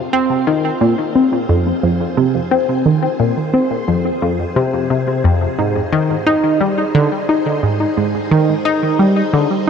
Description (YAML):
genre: ambient, sequencer-driven space music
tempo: 88 BPM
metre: 4/4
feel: straight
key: F minor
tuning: A4 = 440 Hz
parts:
  - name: phased string machine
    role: sustained chords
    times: 0.0-9.7 s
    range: Eb4 to C5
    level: -27 LUFS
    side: equal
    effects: ensemble chorus, phaser
  - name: tight sequenced synth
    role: riff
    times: 0.1-9.7 s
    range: F2 to Eb4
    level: -14 LUFS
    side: equal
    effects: chorus, analog delay
room: moderate huge ambient reverb, RT60 9.6 s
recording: dark, warm production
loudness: -13 LUFS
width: side -7 dB against mid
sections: 0.0-9.7 A section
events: fade-in on string machine 0.0-9.7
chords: 0.0 Fm; 5.6 Ab